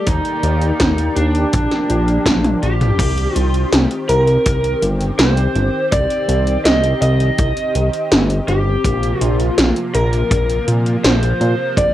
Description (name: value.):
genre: synthwave.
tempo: 82 BPM.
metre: 4/4.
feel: straight.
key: C minor.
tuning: A4 = 443 Hz.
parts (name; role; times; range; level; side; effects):
lead guitar through a small cranked amp; melody; 0.0-11.9 s; D4 to Eb5; -20 LUFS; equal; overdrive, cassette tape, tape echo, plate reverb.
warm analog pad; sustained chords; 0.0-11.9 s; C3 to D5; -24 LUFS; left 1 dB; chorus, sidechain pumping, cassette tape.
fat analog bass; bass; 0.1-11.9 s; G1 to Bb2; -17 LUFS; equal; sidechain pumping.
80s electronic pad drums; drums; 0.1-11.9 s; crash cymbal, hi-hat, snare drum, toms; -18 LUFS; equal; gated reverb on snare and toms, overdrive, cassette tape.
kick drum; drums; 0.1-11.9 s; none; -20 LUFS; equal; cassette tape.
FM electric piano with soft pad layer; second line; 4.1-11.9 s; G4 to Eb5; -23 LUFS; right 2 dB; chorus, tremolo, cassette tape, plate reverb.
room: moderate small room reverb, RT60 0.5 s.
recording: home recording on cassette.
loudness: -14 LUFS.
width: side -13 dB against mid.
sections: 0.0-3.0 A section; 3.0-11.9 B section.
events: drum fill 2.3-3.0.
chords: 0.1 Ebmaj7; 1.5 Bb6; 3.0 Cmadd9; 8.8 Bbsus2.